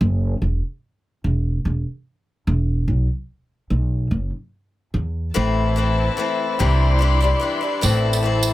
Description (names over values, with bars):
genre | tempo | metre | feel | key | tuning
indie folk with a building arrangement | 146 BPM | 3/4 | straight | unclear | A4 = 439 Hz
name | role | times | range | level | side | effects
upright bass | bass | 0.0-8.5 s | E1 to E2 | -19 LUFS | equal | none
picked acoustic archtop guitar | accompaniment | 5.3-8.5 s | A2 to E4 | -21 LUFS | left 4 dB | dub echo
warm chamber string section | sustained chords | 5.4-8.5 s | E4 to C6 | -27 LUFS | left 2 dB | none
tambourine | percussion | 7.8-8.5 s | none | -25 LUFS | right 8 dB | none
room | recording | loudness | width
studio reverb | echo-heavy mix | -18 LUFS | side -15 dB against mid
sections
0.0-5.4 A section; 5.4-8.5 B section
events
none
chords
0.0 N.C.; 4.1 Esus2/F#; 5.4 Am; 6.6 Cadd9; 7.8 Am